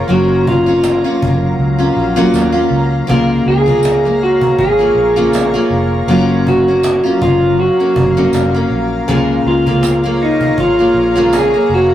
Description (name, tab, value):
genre	indie pop, bedroom pop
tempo	80 BPM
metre	4/4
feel	swing 55% on 16ths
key	Db major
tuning	A4 = 440 Hz
part	electric guitar through a small old amp	melody	0.0-11.9 s	Eb4 to Ab4	-14 LUFS	equal	none
part	picked steel-string acoustic guitar	accompaniment	0.0-11.9 s	Db3 to F4	-15 LUFS	left 1 dB	vibrato effect
part	granular cloud pad	sustained chords	0.0-11.9 s	Gb3 to Bb5	-22 LUFS	equal	built-in reverb
part	vintage muted fingered electric bass	bass	0.1-11.9 s	F1 to Eb2	-18 LUFS	right 1 dB	none
part	cajon	drums	0.1-11.8 s	none	-22 LUFS	equal	none
part	tambourine	percussion	0.8-11.5 s	none	-30 LUFS	right 6 dB	none
room	wet booth ambience, RT60 0.2 s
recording	rough rehearsal-room recording, tube saturation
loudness	-10 LUFS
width	side -12 dB against mid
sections	0.0-11.9 A section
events	none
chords	0.1 Gbmaj7; 3.1 Db6; 6.1 Gbmaj7; 9.1 Db6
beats	| 0.10 0.84 1.59 2.34 | 3.09 3.84 4.59 5.34 | 6.09 6.84 7.58 8.34 | 9.08 9.83 10.58 11.33